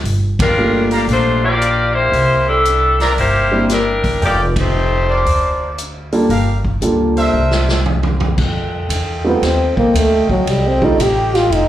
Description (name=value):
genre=jazz, big band swing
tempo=115 BPM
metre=4/4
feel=swing 66% on 8ths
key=F mixolydian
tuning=A4 = 440 Hz
part: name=upright bass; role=bass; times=0.0-11.7 s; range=F1 to F2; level=-18 LUFS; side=equal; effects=none
part: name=swinging big-band drum kit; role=drums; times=0.1-11.7 s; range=crash cymbal, hi-hat, kick drum, ride cymbal, snare drum, toms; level=-22 LUFS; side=equal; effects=none
part: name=clear saxophone section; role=melody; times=0.4-5.6 s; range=G3 to D5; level=-15 LUFS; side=left 2 dB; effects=slapback echo
part: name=warm grand piano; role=accompaniment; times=0.6-11.0 s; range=G3 to A4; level=-16 LUFS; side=right 1 dB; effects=slapback echo
part: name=mellow trumpet section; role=stabs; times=0.9-7.8 s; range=D4 to Bb5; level=-19 LUFS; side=right 1 dB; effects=slapback echo
part: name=mellow saxophone section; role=sustained chords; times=8.4-11.7 s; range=F4 to G5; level=-24 LUFS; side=right 1 dB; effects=none
part: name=breathy trombone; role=melody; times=9.3-11.7 s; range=Gb3 to G4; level=-14 LUFS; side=equal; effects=slapback echo
room=moderate club reverb, RT60 0.5 s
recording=live gig heard through the venue's PA, club reverb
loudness=-13 LUFS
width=side -12 dB against mid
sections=0.0-8.4 A section; 8.4-11.7 B section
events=band accent 0.3, 4.5; drum fill 7.3-8.4; trombone solo 8.4-11.7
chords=0.1 Gm7; 2.1 C9; 4.2 F9; 5.3 Dm7; 6.3 Gm7; 7.3 C9; 8.4 F9